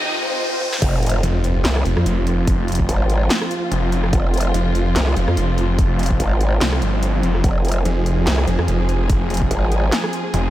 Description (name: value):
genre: heavy wobble dubstep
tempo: 145 BPM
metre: 4/4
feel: swing 55% on 16ths, half-time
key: F minor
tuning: A4 = 440 Hz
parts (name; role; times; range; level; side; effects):
- warm studio violin section; melody; 0.0-0.7 s; C4 to Eb5; -28 LUFS; left 1 dB; tape echo
- riser, swell and sub drop; sound effects; 0.0-2.5 s; none; -28 LUFS; equal; none
- big-room dance drum kit; drums; 0.6-10.4 s; crash cymbal, handclaps, hi-hat, rim click, snare drum, toms; -26 LUFS; equal; high-pass filter on snare, studio reverb, high-pass filter on hats, high-pass filter on toms, high-pass filter on cymbals
- dark studio string section; sustained chords; 0.8-10.5 s; F3 to Ab4; -26 LUFS; right 1 dB; sidechain pumping
- growl bass; bass; 0.8-9.9 s; F1 to C2; -18 LUFS; equal; chorus, overdrive
- electronic kick drum; drums; 0.8-9.5 s; none; -20 LUFS; equal; studio reverb
- snarling distorted saw bass; bass; 1.2-10.5 s; F1 to F2; -19 LUFS; equal; distortion, overdrive
room: light reverb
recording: high-pass filter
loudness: -16 LUFS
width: side -14 dB against mid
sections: 0.8-10.5 A section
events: break 0.0-0.8; riser 0.0-0.8; swell 0.0-0.8; drum fill 0.6; drop 0.8-10.5; impact 0.8-2.5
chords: 0.0 N.C.; 0.8 F5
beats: 0.41 | 0.82 1.23 1.65 2.06 | 2.47 2.89 3.30 3.72 | 4.13 4.54 4.96 5.37 | 5.79 6.20 6.61 7.03 | 7.44 7.85 8.27 8.68 | 9.10 9.51 9.92 10.34